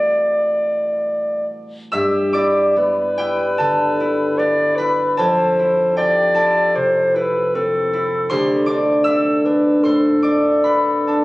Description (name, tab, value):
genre	classical, impressionist duo for clarinet and harp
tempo	67-81 BPM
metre	4/4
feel	rubato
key	G mixolydian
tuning	A4 = 444 Hz
part	mellow clarinet	melody	0.0-11.2 s	G4 to D5	-18 LUFS	equal	none
part	concert harp	accompaniment	0.0-11.2 s	A1 to E6	-17 LUFS	equal	none
room	moderate scoring stage reverb, RT60 1.9 s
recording	recorded on a phone in the room, club reverb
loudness	-15 LUFS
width	side -20 dB against mid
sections	0.0-1.9 A section; 1.9-11.2 B section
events	none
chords	0.0 Am11; 1.9 G6; 5.2 Fmaj7; 8.3 D9sus4